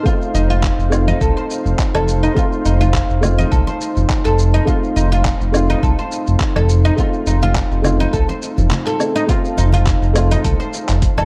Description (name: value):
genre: organic downtempo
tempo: 104 BPM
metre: 4/4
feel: swing 54% on 16ths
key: unclear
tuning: A4 = 440 Hz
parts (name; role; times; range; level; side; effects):
- felt-muted upright piano; accompaniment; 0.0-11.2 s; A3 to A4; -25 LUFS; equal; sidechain pumping, tape echo
- warm analog pad; sustained chords; 0.0-11.2 s; Eb4 to C6; -28 LUFS; equal; chorus, sidechain pumping
- oud; arpeggios; 0.0-11.2 s; Eb4 to C5; -25 LUFS; equal; tape echo
- dusty soul sampler-style drum kit; drums; 0.1-11.2 s; handclaps, hi-hat, shaker, woodblock; -28 LUFS; equal; none
- electronic kick drum; drums; 0.1-11.1 s; none; -21 LUFS; equal; none
- smooth gliding synth bass; bass; 0.3-11.2 s; F1 to C2; -18 LUFS; equal; sidechain pumping
- congas; percussion; 0.3-11.2 s; none; -28 LUFS; equal; none
room: light reverb, studio ambience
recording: dark, warm production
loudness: -16 LUFS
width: mono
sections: 0.0-9.3 A section; 9.3-11.2 B section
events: kick drops out 8.7-9.3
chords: 0.0 F7